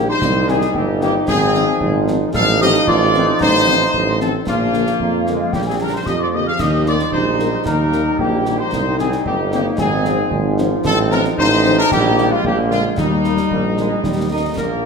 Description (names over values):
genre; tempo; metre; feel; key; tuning
military-style march for wind band; 113 BPM; 2/4; straight; Eb major; A4 = 435 Hz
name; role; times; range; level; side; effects
bright trumpet section; melody; 0.0-14.9 s; Eb4 to F5; -20 LUFS; left 1 dB; none
mellow hollow wooden piccolo; second line; 0.0-14.8 s; Eb5 to F6; -24 LUFS; left 4 dB; none
warm woodwind section; second line; 0.0-14.9 s; G3 to Eb5; -23 LUFS; left 1 dB; none
mellow French horn section; accompaniment; 0.0-14.4 s; D3 to C4; -26 LUFS; left 5 dB; none
bright trombone section; sustained chords; 0.0-14.9 s; F3 to Eb4; -24 LUFS; right 2 dB; none
clear tuba; bass; 0.0-14.9 s; G1 to F2; -19 LUFS; right 3 dB; none
concert snare drum, concert bass drum and clash cymbals; drums; 0.2-14.8 s; none; -26 LUFS; left 1 dB; none
room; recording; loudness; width
wet large studio reverb, RT60 1.3 s; none; -14 LUFS; side -5 dB against mid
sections
0.0-14.9 A section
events
none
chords
0.2 Cm; 1.3 Fm7/Ab; 2.3 F7/A; 4.5 Bb; 6.6 Eb; 8.7 Cm; 9.8 Fm7/Ab; 10.8 F7/A; 11.9 Eb/Bb; 12.4 Bb7; 13.0 Eb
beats
| 0.22 0.75 | 1.28 1.81 | 2.34 2.88 | 3.41 3.94 | 4.47 5.00 | 5.53 6.07 | 6.60 7.13 | 7.66 8.19 | 8.72 9.26 | 9.79 10.32 | 10.85 11.38 | 11.91 12.45 | 12.98 13.51 | 14.04 14.57